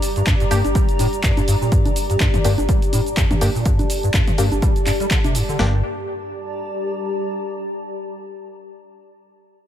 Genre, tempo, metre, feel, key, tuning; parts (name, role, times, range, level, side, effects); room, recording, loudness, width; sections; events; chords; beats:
acid house; 124 BPM; 4/4; swing 56% on 16ths; G minor; A4 = 440 Hz
punchy analog drum machine; drums; 0.0-5.6 s; congas, handclaps, hi-hat, shaker, toms; -25 LUFS; right 1 dB
granular cloud pad; texture; 0.0-7.5 s; G4 to Bb5; -25 LUFS; left 1 dB; built-in reverb, sidechain pumping
overdriven acid bass; riff; 0.2-5.8 s; G1 to G3; -21 LUFS; equal; ensemble chorus, sidechain pumping
punchy analog drum machine; drums; 0.3-5.7 s; kick drum, snare drum; -19 LUFS; equal
band-passed chord stab; stabs; 0.5-5.8 s; Bb3 to G4; -27 LUFS; left 2 dB; chorus, digital delay
round analog bass; bass; 5.6-5.8 s; G1; -23 LUFS; equal; sidechain pumping
light reverb, digital ambience; -17 LUFS; side -10 dB against mid
0.0-5.6 A section; 5.6-7.5 B section
filter sweep on synth stab 0.0-5.6
0.0 Gm
0.27 0.75 1.24 | 1.72 2.20 2.69 3.17 | 3.65 4.14 4.62 5.11 | 5.59 6.08 6.56 7.04